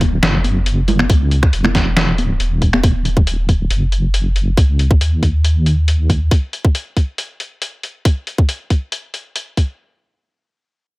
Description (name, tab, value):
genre	deep dubstep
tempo	138 BPM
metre	4/4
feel	half-time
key	Eb minor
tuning	A4 = 439 Hz
part	deep soft wobble bass	bass	0.0-6.3 s	Eb1 to Eb2	-15 LUFS	equal	chorus
part	electronic kick drum	drums	0.0-9.7 s	none	-13 LUFS	equal	overdrive
part	trip hop sampler-style drum kit	drums	0.0-9.7 s	finger snaps, hi-hat, snare drum	-20 LUFS	left 1 dB	none
part	congas	percussion	0.4-2.8 s	none	-21 LUFS	equal	dub echo
room	little or no reverb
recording	none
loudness	-13 LUFS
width	side -21 dB against mid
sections	0.0-9.8 A section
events	none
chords	none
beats	0.23 0.66 | 1.09 1.53 1.97 2.40 | 2.83 3.27 3.70 4.14 | 4.57 5.01 5.44 5.88 | 6.31 6.75 7.18 7.62 | 8.05 8.49 8.92 9.36